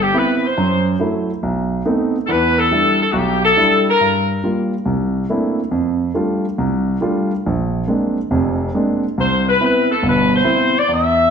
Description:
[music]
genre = jazz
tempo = 140 BPM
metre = 4/4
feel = swing 65% on 8ths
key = C major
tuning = A4 = 440 Hz
[part]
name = bright saxophone section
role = melody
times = 0.0-4.3, 9.2-11.3 s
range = F#4 to E5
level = -15 LUFS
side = left 2 dB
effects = none
[part]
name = warm grand piano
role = accompaniment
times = 0.0-11.3 s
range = F1 to F4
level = -17 LUFS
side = right 1 dB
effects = none
[sound]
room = wet large studio reverb, RT60 1.4 s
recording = none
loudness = -14 LUFS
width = side -6 dB against mid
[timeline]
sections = 0.0-11.3 A section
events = none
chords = 0.0 Cmaj7; 0.6 F#m7b5; 1.4 B7b9; 2.3 Em7; 4.0 Gm7; 4.9 C13; 5.7 F69; 7.4 Bb9; 9.2 Cmaj7

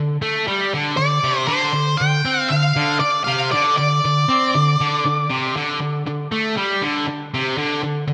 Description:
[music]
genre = rock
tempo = 118 BPM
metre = 4/4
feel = straight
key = D minor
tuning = A4 = 440 Hz
[part]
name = sludgy distorted guitar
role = riff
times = 0.0-8.1 s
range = C3 to C4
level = -22 LUFS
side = equal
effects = overdrive, slapback echo
[part]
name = octave-fuzz lead guitar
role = melody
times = 1.0-8.1 s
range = C5 to G5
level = -21 LUFS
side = equal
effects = distortion
[sound]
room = wet lush hall reverb, RT60 2.3 s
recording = big arena sound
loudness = -19 LUFS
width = mono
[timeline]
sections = 0.0-8.1 A section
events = none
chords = none

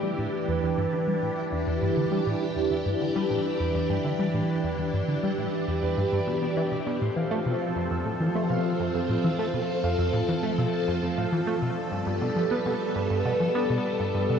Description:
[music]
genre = ambient, sequencer-driven space music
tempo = 101 BPM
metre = 4/4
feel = straight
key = E phrygian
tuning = A4 = 439 Hz
[part]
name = phased string machine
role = sustained chords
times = 0.0-14.4 s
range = E3 to A4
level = -27 LUFS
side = equal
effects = ensemble chorus, phaser
[part]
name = Celtic harp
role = arpeggios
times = 0.0-14.4 s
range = A3 to E6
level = -32 LUFS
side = right 1 dB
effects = auto-pan, low-pass filter, ping-pong delay
[part]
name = tight sequenced synth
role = riff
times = 0.0-14.4 s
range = E2 to B3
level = -29 LUFS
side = equal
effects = chorus, ping-pong delay
[sound]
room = wet huge ambient reverb, RT60 9.2 s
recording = worn, warbling old tape, cassette tape, warbly pitch drift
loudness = -24 LUFS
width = side -7 dB against mid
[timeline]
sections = 0.0-14.4 A section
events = filter sweep on harp 0.0-14.4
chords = 0.0 Em7; 7.0 F; 11.8 Gadd9

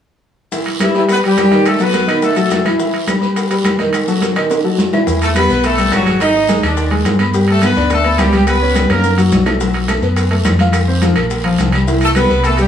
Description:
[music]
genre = latin, salsa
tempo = 212 BPM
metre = 4/4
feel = straight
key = E harmonic minor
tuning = A4 = 440 Hz
[part]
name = clear grand piano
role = accompaniment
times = 0.5-12.7 s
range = D#3 to G#5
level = -16 LUFS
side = left 2 dB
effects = none
[part]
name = bongos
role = percussion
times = 0.5-12.7 s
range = none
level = -24 LUFS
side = left 1 dB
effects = none
[part]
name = congas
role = percussion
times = 0.5-12.7 s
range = none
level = -22 LUFS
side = equal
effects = none
[part]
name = guiro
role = percussion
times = 0.5-12.7 s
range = none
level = -29 LUFS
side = right 4 dB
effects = none
[part]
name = maracas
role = percussion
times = 0.5-12.7 s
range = none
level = -33 LUFS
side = left 4 dB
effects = none
[part]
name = timbales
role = percussion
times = 0.7-12.7 s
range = none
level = -24 LUFS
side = right 3 dB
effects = none
[part]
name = bright horn section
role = melody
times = 0.8-2.7, 5.2-9.2, 12.0-12.7 s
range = E3 to D#5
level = -15 LUFS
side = equal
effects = none
[part]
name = claves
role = percussion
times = 0.8-12.3 s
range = none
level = -28 LUFS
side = left 1 dB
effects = none
[part]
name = fingered electric bass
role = bass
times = 5.1-12.7 s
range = G#1 to G2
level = -17 LUFS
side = equal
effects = none
[sound]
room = wet studio reverb, RT60 0.9 s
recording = band playing live in one room, small room ambience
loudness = -11 LUFS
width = side -9 dB against mid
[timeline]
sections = 0.5-5.1 A section; 5.1-12.7 B section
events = drum fill 4.4-5.1, 8.9-9.6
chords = 0.5 Em; 1.7 B7; 2.8 Em; 3.9 D#dim; 5.1 Emadd9; 6.2 G#5; 7.3 G; 8.5 Gmaj7#11/C#; 9.0 F#; 9.6 B5; 10.7 F5; 11.3 A#sus2; 11.9 Cmaj7

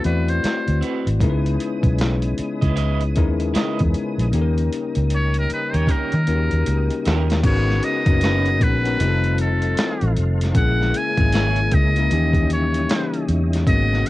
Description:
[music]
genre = R&B, neo-soul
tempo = 77 BPM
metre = 4/4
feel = swing 62% on 16ths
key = unclear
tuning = A4 = 445 Hz
[part]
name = trumpet with metal mute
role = melody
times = 0.0-14.1 s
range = A4 to G#5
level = -25 LUFS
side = right 1 dB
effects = cassette tape
[part]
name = bell-like tine electric piano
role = accompaniment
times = 0.0-14.1 s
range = D#3 to D5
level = -25 LUFS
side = left 6 dB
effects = fast stereo tremolo, cassette tape
[part]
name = boom bap sampler-style drum kit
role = drums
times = 0.0-14.1 s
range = crash cymbal, hi-hat, kick drum, snare drum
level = -22 LUFS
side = equal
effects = cassette tape
[part]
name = vintage muted fingered electric bass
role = bass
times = 0.1-14.0 s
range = F1 to D#3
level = -20 LUFS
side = equal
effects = none
[part]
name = electric guitar at the edge of break-up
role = second line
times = 0.4-11.6 s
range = C4 to D#5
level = -27 LUFS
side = right 7 dB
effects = tremolo, cassette tape
[part]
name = tonewheel organ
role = sustained chords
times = 1.2-14.1 s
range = B2 to D#5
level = -29 LUFS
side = right 1 dB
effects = fast rotary speaker, chorus vibrato, cassette tape
[sound]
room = little or no reverb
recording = home recording on cassette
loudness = -17 LUFS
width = side -17 dB against mid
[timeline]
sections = 0.0-7.4 A section; 7.4-14.1 B section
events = drum fill 4.3-7.4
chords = 0.0 D13; 1.2 C#m9; 4.3 D#7; 7.4 G#m11; 9.0 F7; 10.6 A#m7b5; 12.1 D#7b9

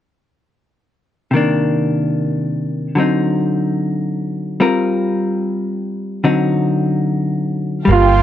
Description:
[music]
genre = jazz ballad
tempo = 73 BPM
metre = 4/4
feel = swing 68% on 8ths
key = unclear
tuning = A4 = 440 Hz
[part]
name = vintage hollow-body jazz guitar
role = accompaniment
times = 1.3-8.2 s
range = C3 to Bb4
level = -16 LUFS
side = left 1 dB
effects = none
[part]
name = breathy trumpet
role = melody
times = 7.9-8.2 s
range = F4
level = -12 LUFS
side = right 7 dB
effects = none
[part]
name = muted studio string section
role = sustained chords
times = 7.9-8.2 s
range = G4 to A5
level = -23 LUFS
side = equal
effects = none
[part]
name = upright bass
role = bass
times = 7.9-8.2 s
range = G1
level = -13 LUFS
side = right 1 dB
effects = none
[part]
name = brushed snare drum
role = drums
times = 7.9-8.2 s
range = none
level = -43 LUFS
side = right 2 dB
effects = none
[sound]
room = little or no reverb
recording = dry, close 1970s-style studio recording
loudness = -15 LUFS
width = side -11 dB against mid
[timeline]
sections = 1.3-7.9 A section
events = none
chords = 1.3 Cm9; 3.0 D7b9; 4.6 Gm7; 6.2 D7b9

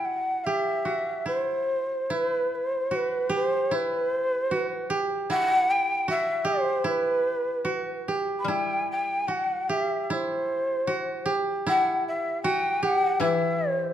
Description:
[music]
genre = japanese traditional, Japanese chamber music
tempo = 75 BPM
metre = 2/4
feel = uneven beats, rubato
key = E hirajoshi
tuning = A4 = 445 Hz
[part]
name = breathy mellow shakuhachi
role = melody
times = 0.0-13.9 s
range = B4 to B5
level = -25 LUFS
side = equal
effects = none
[part]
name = koto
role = second line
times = 0.0-13.9 s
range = E4 to G4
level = -29 LUFS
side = right 3 dB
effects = none
[part]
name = koto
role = accompaniment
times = 8.4-13.9 s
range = E3 to G3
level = -29 LUFS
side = left 4 dB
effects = none
[sound]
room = moderate recital hall reverb, RT60 1.7 s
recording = dark, warm production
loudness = -24 LUFS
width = side -10 dB against mid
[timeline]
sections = 0.0-2.1 A section; 2.1-13.9 B section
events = none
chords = none

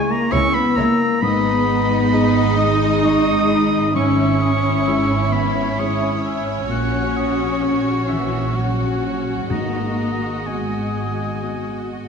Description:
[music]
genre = cinematic, emotional film score for orchestra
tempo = 65 BPM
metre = 3/4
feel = uneven beats, rubato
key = G# minor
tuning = A4 = 440 Hz
[part]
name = bright oboe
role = second line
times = 0.0-11.9 s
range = E5 to D#6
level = -25 LUFS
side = equal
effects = none
[part]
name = silver concert flute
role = second line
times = 0.0-11.9 s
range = B5 to F#6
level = -28 LUFS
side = left 4 dB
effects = none
[part]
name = felt-muted upright piano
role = accompaniment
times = 0.0-12.1 s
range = C#2 to D#5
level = -26 LUFS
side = left 2 dB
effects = none
[part]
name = mellow French horn section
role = sustained chords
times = 0.0-11.9 s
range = E3 to D#4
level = -23 LUFS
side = left 4 dB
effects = none
[part]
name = rich symphonic cello section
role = bass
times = 0.0-11.9 s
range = E3 to D#4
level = -26 LUFS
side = right 4 dB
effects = none
[part]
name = warm symphonic violin section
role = melody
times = 0.3-12.1 s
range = C#5 to D#5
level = -31 LUFS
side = left 3 dB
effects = none
[part]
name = warm symphonic violin section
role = second line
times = 0.3-12.1 s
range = D#4 to F#4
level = -28 LUFS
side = left 2 dB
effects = none
[part]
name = warm symphonic viola section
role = accompaniment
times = 0.3-12.1 s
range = G#3 to C#4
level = -27 LUFS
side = right 3 dB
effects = none
[part]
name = warm symphonic double bass section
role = bass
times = 0.3-12.1 s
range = G#1 to C#2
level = -24 LUFS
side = right 4 dB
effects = none
[part]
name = timpani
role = percussion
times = 9.5-10.9 s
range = G#2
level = -31 LUFS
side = left 2 dB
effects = none
[sound]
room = wet scoring stage reverb, RT60 1.8 s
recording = dark, warm production, nothing above 10.6 kHz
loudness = -16 LUFS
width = side -6 dB against mid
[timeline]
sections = 0.0-12.1 A section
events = none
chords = 0.0 C#m; 1.2 G#m; 3.9 C#m/G#; 6.7 F#/A#; 9.5 G#m7

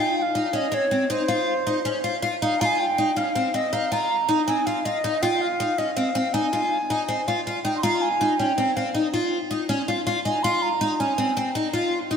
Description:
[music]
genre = progressive instrumental, progressive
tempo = 161 BPM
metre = 7/4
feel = straight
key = unclear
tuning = A4 = 440 Hz
[part]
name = wooden flute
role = melody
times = 0.0-11.6 s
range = C5 to C6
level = -24 LUFS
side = right 1 dB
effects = none
[part]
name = picked twelve-string acoustic guitar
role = arpeggios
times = 0.0-12.2 s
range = C4 to F4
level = -23 LUFS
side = left 1 dB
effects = lush chorus, analog delay
[sound]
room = wet plate reverb, RT60 2.5 s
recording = dreamy mix soaked in reverb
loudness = -21 LUFS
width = side -7 dB against mid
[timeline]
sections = 0.0-12.2 A section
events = none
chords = 0.0 Cmadd11

